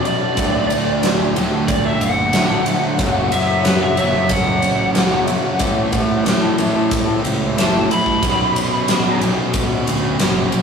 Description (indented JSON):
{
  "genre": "quiet-loud alternative rock",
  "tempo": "92 BPM",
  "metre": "4/4",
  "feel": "straight",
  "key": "B minor",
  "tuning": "A4 = 440 Hz",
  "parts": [
    { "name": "lead guitar through a small cranked amp", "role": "melody", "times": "0.0-9.2 s", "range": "B4 to B5", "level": "-21 LUFS", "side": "left 1 dB", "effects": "overdrive" },
    { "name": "picked acoustic archtop guitar", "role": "arpeggios", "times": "0.0-8.2 s", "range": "D2 to A4", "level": "-23 LUFS", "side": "left 5 dB", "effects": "none" },
    { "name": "crunchy overdriven guitar", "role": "riff", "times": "0.0-10.6 s", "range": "B1 to A3", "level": "-26 LUFS", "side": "left 5 dB", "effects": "none" },
    { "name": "distorted electric guitar", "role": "riff", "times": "0.0-10.6 s", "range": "B1 to A3", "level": "-23 LUFS", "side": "right 7 dB", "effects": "overdrive" },
    { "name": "huge arena drum kit", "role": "drums", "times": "0.1-10.6 s", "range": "kick drum, ride cymbal, snare drum", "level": "-19 LUFS", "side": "equal", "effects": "none" },
    { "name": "fuzz fingered electric bass", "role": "bass", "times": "0.4-10.5 s", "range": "C#1 to B2", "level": "-23 LUFS", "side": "right 2 dB", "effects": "overdrive" }
  ],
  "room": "light reverb",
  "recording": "rough rehearsal-room recording, warm saturation, studio ambience",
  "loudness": "-15 LUFS",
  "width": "side -6 dB against mid",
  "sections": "0.0-10.6 A section",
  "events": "lead electric guitar solo 0.0-10.6",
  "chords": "0.4 D; 3.0 F#m; 5.6 A; 8.2 Bm"
}